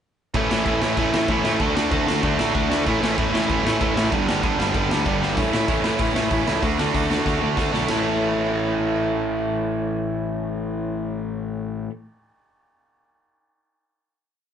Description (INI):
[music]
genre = punk rock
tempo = 191 BPM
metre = 4/4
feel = straight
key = A mixolydian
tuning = A4 = 440 Hz
[part]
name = crunchy overdriven guitar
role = riff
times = 0.3-11.9 s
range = G2 to D4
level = -26 LUFS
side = left 8 dB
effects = none
[part]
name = crunchy overdriven guitar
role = riff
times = 0.3-11.9 s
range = G2 to A4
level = -23 LUFS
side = right 6 dB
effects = none
[part]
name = distorted electric guitar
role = riff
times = 0.3-5.4 s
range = G2 to D4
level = -26 LUFS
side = equal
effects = overdrive
[part]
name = fuzz picked electric bass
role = bass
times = 0.3-11.9 s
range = G1 to A2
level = -29 LUFS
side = equal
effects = overdrive
[part]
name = raw garage drum kit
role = drums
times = 0.3-8.0 s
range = crash cymbal, hi-hat, kick drum, ride cymbal, snare drum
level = -26 LUFS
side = left 1 dB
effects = none
[sound]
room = moderate studio reverb, RT60 0.6 s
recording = band playing live in one room, nothing above 10.6 kHz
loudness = -20 LUFS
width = side -8 dB against mid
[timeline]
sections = 0.3-5.4 riff; 5.4-7.9 outro; 7.9-10.4 final chord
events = drum fill 5.2, 7.3-7.9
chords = 0.3 A; 1.6 D; 2.9 A; 4.1 G; 5.4 A; 6.6 D; 7.9 A